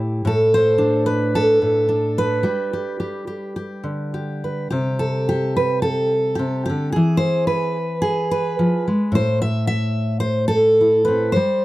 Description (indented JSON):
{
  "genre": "folk, solo fingerstyle acoustic guitar",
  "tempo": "109 BPM",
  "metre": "4/4",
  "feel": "rubato",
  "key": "C major",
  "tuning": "A4 = 441 Hz",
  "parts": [
    { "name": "fingerpicked steel-string acoustic guitar", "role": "solo", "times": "0.0-11.6 s", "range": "A2 to E5", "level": "-17 LUFS", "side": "equal", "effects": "none" }
  ],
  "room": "little or no reverb",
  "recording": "dry, close 1970s-style studio recording",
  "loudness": "-17 LUFS",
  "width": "side -17 dB against mid",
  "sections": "0.0-4.7 A section; 4.7-11.6 B section",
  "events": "none",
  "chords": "0.3 D5/A; 2.4 G; 4.7 C5; 7.0 E; 9.1 Am"
}